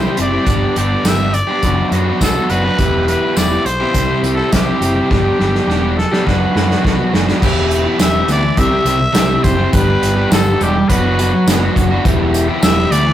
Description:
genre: indie rock.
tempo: 104 BPM.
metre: 4/4.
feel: straight.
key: E minor.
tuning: A4 = 438 Hz.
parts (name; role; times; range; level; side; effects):
growling trumpet; melody; 0.0-13.1 s; G4 to E5; -19 LUFS; equal; none.
overdriven electric guitar; riff; 0.0-13.1 s; C3 to G4; -16 LUFS; equal; none.
growling fingered electric bass; bass; 0.0-13.1 s; E1 to F#2; -19 LUFS; equal; overdrive.
unplugged drum kit; drums; 0.2-13.1 s; crash cymbal, hi-hat, kick drum, snare drum, tambourine; -17 LUFS; right 1 dB; none.
room: moderate studio reverb, RT60 0.7 s.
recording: rough rehearsal-room recording, warm saturation.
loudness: -12 LUFS.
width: side -11 dB against mid.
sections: 0.0-7.4 A section; 7.4-13.1 B section.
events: drum fill 5.1-7.4.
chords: 0.5 G; 1.6 Bm/F#; 2.8 Em; 4.0 C; 5.1 G; 6.3 Bm/F#; 7.4 Em; 8.6 C; 9.7 G; 10.9 Bm/F#; 12.1 Em.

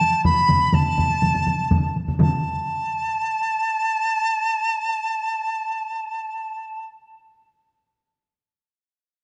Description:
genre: japanese traditional, taiko drum ensemble.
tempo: 123 BPM.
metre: 4/4.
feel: straight.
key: unclear.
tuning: A4 = 440 Hz.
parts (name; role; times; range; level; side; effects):
bright reedy dizi; melody; 0.0-6.9 s; A5 to B5; -24 LUFS; equal; none.
taiko ensemble; percussion; 0.0-2.4 s; none; -28 LUFS; equal; none.
taiko ensemble; percussion; 0.2-2.7 s; none; -28 LUFS; equal; none.
taiko ensemble; percussion; 0.2-2.7 s; none; -26 LUFS; equal; none.
room: wet scoring stage reverb, RT60 1.5 s.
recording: none.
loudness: -22 LUFS.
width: mono.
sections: 0.0-2.2 A section; 2.2-6.1 B section.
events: none.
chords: none.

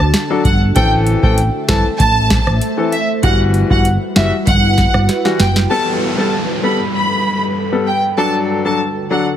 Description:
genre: dancehall.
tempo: 97 BPM.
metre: 4/4.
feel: straight.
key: G major.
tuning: A4 = 440 Hz.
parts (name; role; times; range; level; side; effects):
ethereal airy pad; sustained chords; 0.0-9.4 s; D2 to E5; -22 LUFS; equal; ensemble chorus, built-in reverb, sidechain pumping.
woody fretless electric bass; bass; 0.0-5.7 s; F#1 to D2; -15 LUFS; equal; none.
booming analog drum machine; drums; 0.0-5.7 s; hi-hat, kick drum, rim click, snare drum; -16 LUFS; right 1 dB; none.
clear concert grand piano; accompaniment; 0.3-9.3 s; E3 to A4; -18 LUFS; left 4 dB; none.
warm studio violin section; melody; 0.4-9.2 s; E5 to B5; -19 LUFS; right 1 dB; digital delay.
downlifter; sound effects; 5.7-9.4 s; none; -25 LUFS; right 1 dB; none.
room: light reverb.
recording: heavily compressed radio sound.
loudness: -12 LUFS.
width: side -10 dB against mid.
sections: 0.0-5.7 A section; 5.7-9.4 B section.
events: drum fill 5.1-5.7.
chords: 0.0 D; 0.8 Am; 3.2 Emadd9; 5.7 Gadd9; 8.2 D.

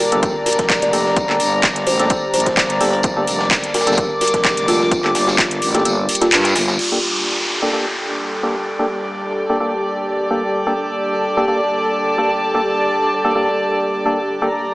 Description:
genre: bass house.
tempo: 128 BPM.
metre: 4/4.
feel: swing 54% on 16ths.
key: G minor.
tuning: A4 = 440 Hz.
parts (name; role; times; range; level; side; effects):
kalimba; melody; 0.0-6.8 s; F4 to D5; -21 LUFS; equal; digital delay.
deep dark ambient pad; sustained chords; 0.0-14.7 s; G3 to Bb4; -25 LUFS; equal; chorus, built-in reverb, sidechain pumping.
dark chamber string section; texture; 0.0-14.7 s; G4 to D6; -21 LUFS; equal; sidechain pumping.
percussive organ stab; stabs; 0.1-14.5 s; Bb3 to A4; -22 LUFS; equal; chorus, sidechain pumping, digital delay.
growling FM bass; bass; 0.1-6.8 s; F1 to G2; -24 LUFS; equal; tube saturation, sidechain pumping.
house drum kit; drums; 0.1-6.9 s; crash cymbal, handclaps, hi-hat; -19 LUFS; equal; overdrive.
deep reggae drum kit; drums; 0.2-6.8 s; hi-hat, snare drum, tambourine; -25 LUFS; equal; high-pass filter on hats, high-pass filter on snare, high-pass filter on perc, high-pass filter on room.
electronic kick drum; drums; 0.2-5.5 s; none; -23 LUFS; equal; overdrive.
downlifter; sound effects; 6.8-10.5 s; none; -23 LUFS; equal; none.
room: wet lush hall reverb, RT60 1.8 s, studio ambience.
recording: small speaker sound.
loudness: -15 LUFS.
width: side -20 dB against mid.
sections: 0.0-6.8 A section; 6.8-14.7 B section.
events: kick drops out 5.9-6.8; band accent 6.3; filter sweep on synth stab 6.8-14.7.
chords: 0.0 Gmadd9.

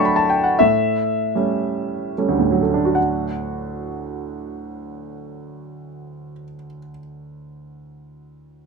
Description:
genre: classical, romantic nocturne for solo piano.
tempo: 23-30 BPM (dotted quarters).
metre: 12/8.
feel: rubato.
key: D major.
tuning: A4 = 440 Hz.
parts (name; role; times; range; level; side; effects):
clear grand piano; solo; 0.0-8.7 s; D2 to C#6; -19 LUFS; right 1 dB; none.
room: light reverb.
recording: minimal, uncompressed stereo recording.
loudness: -18 LUFS.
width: side -4 dB against mid.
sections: 0.0-3.0 A section; 3.0-8.7 B section.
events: slowing down 0.0-3.0.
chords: 0.0 D/A; 0.6 A7; 3.0 D.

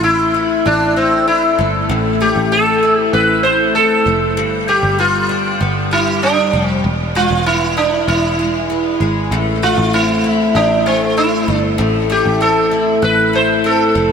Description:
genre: dream pop.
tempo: 97 BPM.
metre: 4/4.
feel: straight.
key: A minor.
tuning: A4 = 440 Hz.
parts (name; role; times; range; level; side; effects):
sitar; melody; 0.0-14.1 s; C4 to C5; -14 LUFS; right 1 dB; ping-pong delay.
picked twelve-string acoustic guitar; arpeggios; 0.0-14.1 s; G2 to E4; -17 LUFS; left 3 dB; lush chorus, ping-pong delay.
picked electric bass; bass; 0.0-14.1 s; E1 to A1; -21 LUFS; right 1 dB; none.
room: moderate huge ambient reverb, RT60 6.8 s.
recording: none.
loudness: -12 LUFS.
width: side -6 dB against mid.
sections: 0.0-14.1 A section.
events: none.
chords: 0.0 Am; 4.4 G; 6.8 E; 9.3 Am.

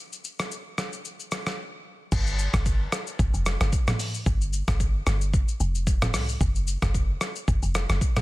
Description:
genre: amapiano.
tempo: 112 BPM.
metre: 4/4.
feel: swing 55% on 16ths.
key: unclear.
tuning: A4 = 440 Hz.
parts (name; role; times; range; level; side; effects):
dusty soul sampler-style drum kit; drums; 0.1-8.2 s; crash cymbal, hi-hat, kick drum, rim click, shaker, toms; -26 LUFS; equal; soft clipping on snare.
deep log drum bass; bass; 2.1-8.0 s; F1 to C2; -25 LUFS; equal; none.
room: little or no reverb.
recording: dense, heavily limited modern master.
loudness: -23 LUFS.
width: side -19 dB against mid.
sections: 0.0-2.1 A section; 2.1-8.2 B section.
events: break 1.6-2.1; drop 2.1-8.2.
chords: none.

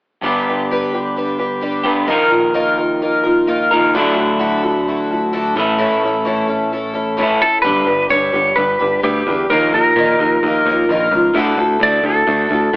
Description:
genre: rock.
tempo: 130 BPM.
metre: 4/4.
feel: straight.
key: unclear.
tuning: A4 = 440 Hz.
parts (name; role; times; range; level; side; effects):
picked twelve-string acoustic guitar; accompaniment; 0.2-12.8 s; A2 to B4; -17 LUFS; left 1 dB; none.
electric guitar through a small old amp; riff; 0.2-12.8 s; G2 to Bb4; -19 LUFS; equal; none.
modern bright picked electric bass; bass; 3.9-12.8 s; G1 to Bb2; -21 LUFS; equal; none.
clean lap steel guitar; melody; 7.4-12.8 s; G4 to D5; -15 LUFS; equal; none.
room: moderate studio reverb, RT60 0.5 s.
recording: band playing live in one room, AM radio sound.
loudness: -13 LUFS.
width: side -23 dB against mid.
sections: 0.2-7.6 A section; 7.6-12.8 B section.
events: none.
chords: 0.2 G; 2.1 Ebsus2; 3.9 Dadd9; 5.6 A; 7.6 G; 9.5 Ebsus2; 11.3 Dadd9.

